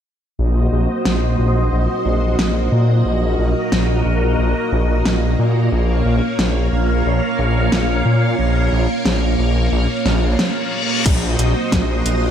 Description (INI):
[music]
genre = synthwave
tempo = 90 BPM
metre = 4/4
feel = straight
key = unclear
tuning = A4 = 440 Hz
[part]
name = string machine, full ensemble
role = sustained chords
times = 0.4-12.3 s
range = Bb3 to F5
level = -20 LUFS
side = right 1 dB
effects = ensemble chorus, sidechain pumping
[part]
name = wide detuned saw bass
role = bass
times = 0.4-12.3 s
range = Bb1 to Bb2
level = -17 LUFS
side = equal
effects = chorus, tube saturation
[part]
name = pop drum kit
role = drums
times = 1.1-12.2 s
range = crash cymbal, hi-hat, snare drum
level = -22 LUFS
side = equal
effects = overdrive, gated reverb
[part]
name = reverse cymbal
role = sound effects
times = 10.2-11.1 s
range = none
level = -25 LUFS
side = left 6 dB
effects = none
[part]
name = electronic kick drum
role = drums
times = 11.1-11.9 s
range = none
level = -18 LUFS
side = equal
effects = overdrive
[sound]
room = light reverb, digital ambience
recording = none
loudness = -15 LUFS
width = side -9 dB against mid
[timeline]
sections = 0.4-11.1 A section; 11.1-12.3 B section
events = filter sweep on detuned saw bass 0.4-11.1; filter sweep on string machine 0.4-11.1; reverse cymbal 10.2-11.1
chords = 0.4 Cdim/Bb; 5.7 Bbm; 11.1 Cdim/Bb